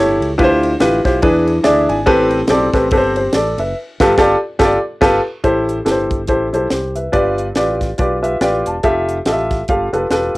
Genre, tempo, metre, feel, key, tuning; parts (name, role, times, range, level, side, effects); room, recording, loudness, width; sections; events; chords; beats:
uptempo gospel; 142 BPM; 4/4; swing 58% on 8ths; A4 = 442 Hz
warm upright piano; accompaniment; 0.0-10.4 s; G2 to A5; -14 LUFS; equal; cassette tape
fingered electric bass; bass; 0.0-10.4 s; E1 to E2; -24 LUFS; equal
crisp fusion drum kit; drums; 0.2-10.4 s; crash cymbal, hi-hat, kick drum, ride cymbal, snare drum; -21 LUFS; equal; cassette tape
light reverb; home recording on cassette; -13 LUFS; side -20 dB against mid
0.0-5.4 A section; 5.4-10.4 B section
upright piano fill 1.4-2.1, 8.2-8.8; band accent 3.8-5.4
0.4 Dm11; 1.2 E7; 2.1 Am9; 3.8 G9; 5.4 Am7; 7.1 G7; 8.8 Fmaj9
| 0.39 0.81 1.23 1.65 | 2.07 2.49 2.91 3.33 | 3.75 4.17 4.60 5.02 | 5.44 5.87 6.29 6.71 | 7.14 7.56 7.99 8.41 | 8.83 9.26 9.68 10.11